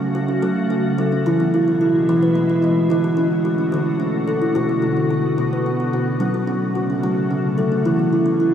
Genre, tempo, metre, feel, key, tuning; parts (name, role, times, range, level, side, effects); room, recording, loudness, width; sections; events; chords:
world meditative, meditative tuned percussion; 73 BPM (dotted quarters); 6/8; straight; F# minor; A4 = 442 Hz
soft additive organ-like pad; sustained chords; 0.0-8.5 s; B2 to F#4; -22 LUFS; equal; ensemble chorus, built-in reverb, shimmer reverb
kalimba; arpeggios; 0.0-8.5 s; B2 to B4; -18 LUFS; equal; analog delay, shimmer reverb
wet cathedral reverb, RT60 7.2 s; dreamy mix soaked in reverb; -17 LUFS; side -9 dB against mid
0.0-8.5 A section
0.0 F#m; 1.3 E; 2.9 D; 4.6 Bm; 6.2 F#m; 7.9 E